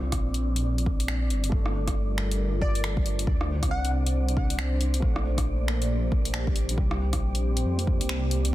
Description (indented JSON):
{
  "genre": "future garage",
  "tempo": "137 BPM",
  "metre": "4/4",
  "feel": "swing 61% on 16ths",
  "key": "unclear",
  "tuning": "A4 = 440 Hz",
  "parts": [
    { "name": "felt-muted upright piano", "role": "accompaniment", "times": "0.0-8.5 s", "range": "G3 to C4", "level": "-36 LUFS", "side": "right 2 dB", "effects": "sidechain pumping, tape echo" },
    { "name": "dark detuned saw bass", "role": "bass", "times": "0.0-8.5 s", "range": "G1 to F2", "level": "-26 LUFS", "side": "equal", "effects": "sidechain pumping" },
    { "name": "wind-like tuned noise texture", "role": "texture", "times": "0.0-8.5 s", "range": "D4 to D5", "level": "-39 LUFS", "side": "left 2 dB", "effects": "built-in reverb" },
    { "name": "deep house drum kit", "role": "drums", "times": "0.1-8.5 s", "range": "finger snaps, hi-hat, rim click", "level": "-34 LUFS", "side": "equal", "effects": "soft clipping on snare" },
    { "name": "electronic kick drum", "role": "drums", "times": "0.1-8.0 s", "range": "none", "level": "-27 LUFS", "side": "equal", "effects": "none" },
    { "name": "dark analog pad", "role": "sustained chords", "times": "2.1-8.5 s", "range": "G3 to F#5", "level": "-34 LUFS", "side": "equal", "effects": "chorus, vintage 12-bit sampler grit, sidechain pumping" },
    { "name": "plucky unison lead", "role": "melody", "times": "2.6-3.9 s", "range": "D5 to F#5", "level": "-36 LUFS", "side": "left 1 dB", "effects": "tape echo" }
  ],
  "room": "light reverb",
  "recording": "dense, heavily limited modern master",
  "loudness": "-24 LUFS",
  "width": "side -15 dB against mid",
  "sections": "0.0-8.5 A section",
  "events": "none",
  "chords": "0.0 C5; 1.5 Gm11; 3.3 D7; 5.0 Bb69; 6.8 C5"
}